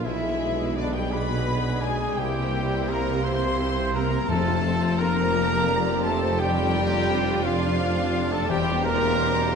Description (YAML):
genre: classical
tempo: 57 BPM (dotted quarters)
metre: 12/8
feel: rubato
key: unclear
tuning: A4 = 440 Hz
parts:
  - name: warm symphonic violin section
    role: melody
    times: 0.0-9.6 s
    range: A4 to D5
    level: -35 LUFS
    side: left 5 dB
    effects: none
  - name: silver concert flute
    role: second line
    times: 0.0-9.6 s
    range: D5 to C6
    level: -33 LUFS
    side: left 1 dB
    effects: none
  - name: warm symphonic violin section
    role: second line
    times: 0.0-9.6 s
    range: D5 to C6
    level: -33 LUFS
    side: left 2 dB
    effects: none
  - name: rich symphonic viola section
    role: accompaniment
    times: 0.0-9.5 s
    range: G#3 to G#4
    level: -33 LUFS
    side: right 1 dB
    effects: none
  - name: mellow French horn section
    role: sustained chords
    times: 0.0-9.6 s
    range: D3 to C4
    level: -31 LUFS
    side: left 4 dB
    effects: none
  - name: warm trombone section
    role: sustained chords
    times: 0.0-9.6 s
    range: D3 to C4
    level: -35 LUFS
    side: right 4 dB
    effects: none
  - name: concert harp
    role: arpeggios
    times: 0.0-9.6 s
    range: B2 to F5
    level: -32 LUFS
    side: left 11 dB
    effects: none
  - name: mellow trumpet section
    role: stabs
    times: 0.0-9.5 s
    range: D4 to C5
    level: -28 LUFS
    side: right 1 dB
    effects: none
  - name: warm symphonic cello section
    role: bass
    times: 0.0-9.6 s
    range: E2 to C3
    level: -31 LUFS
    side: right 2 dB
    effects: none
  - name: warm tuba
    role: bass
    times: 0.0-9.6 s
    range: E1 to C2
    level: -31 LUFS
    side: right 4 dB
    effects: none
  - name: rich symphonic double bass section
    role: bass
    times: 0.1-9.6 s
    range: E1 to C2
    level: -32 LUFS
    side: right 2 dB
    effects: none
  - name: timpani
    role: percussion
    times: 4.3-5.3 s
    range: F2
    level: -31 LUFS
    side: left 5 dB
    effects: none
room: wet scoring stage reverb, RT60 1.9 s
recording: nothing above 10.8 kHz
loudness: -21 LUFS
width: side -6 dB against mid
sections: 0.0-9.6 A section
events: none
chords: 0.0 Bdim7; 2.2 C7; 4.3 F; 8.5 C/E